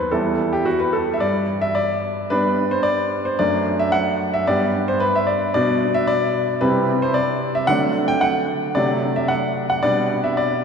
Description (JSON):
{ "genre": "classical-period piano sonatina", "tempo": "111 BPM", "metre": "4/4", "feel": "rubato", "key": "unclear", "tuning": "A4 = 442 Hz", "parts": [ { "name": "clear grand piano", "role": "solo", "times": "0.0-10.6 s", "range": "E2 to G5", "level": "-17 LUFS", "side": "equal", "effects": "none" } ], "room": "wet church reverb, RT60 3.2 s", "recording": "minimal, uncompressed stereo recording", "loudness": "-17 LUFS", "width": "side -6 dB against mid", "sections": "0.0-10.6 A section", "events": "none", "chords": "0.1 Em; 1.2 G; 3.4 D/F#; 4.5 G; 5.6 Bm; 6.6 C; 7.7 D; 8.8 D7/C; 9.8 G/B" }